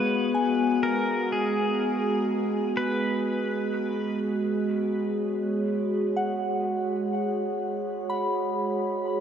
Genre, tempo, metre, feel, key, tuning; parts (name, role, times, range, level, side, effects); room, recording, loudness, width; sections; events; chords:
ambient; 62 BPM; 4/4; straight; G# minor; A4 = 439 Hz
pedal steel guitar; melody; 0.0-4.2 s; G#4 to B4; -31 LUFS; equal; shimmer reverb, diffuse ambient delay
warbly tape-like pad; sustained chords; 0.0-9.2 s; G#3 to C#5; -26 LUFS; equal; chorus, built-in reverb, shimmer reverb
soft synth bell; arpeggios; 0.0-9.2 s; F#5 to B5; -32 LUFS; left 3 dB; chorus, shimmer reverb, diffuse ambient delay
wet cathedral reverb, RT60 6.9 s; -24 LUFS; side -8 dB against mid
0.0-9.2 A section
0.0 G#m7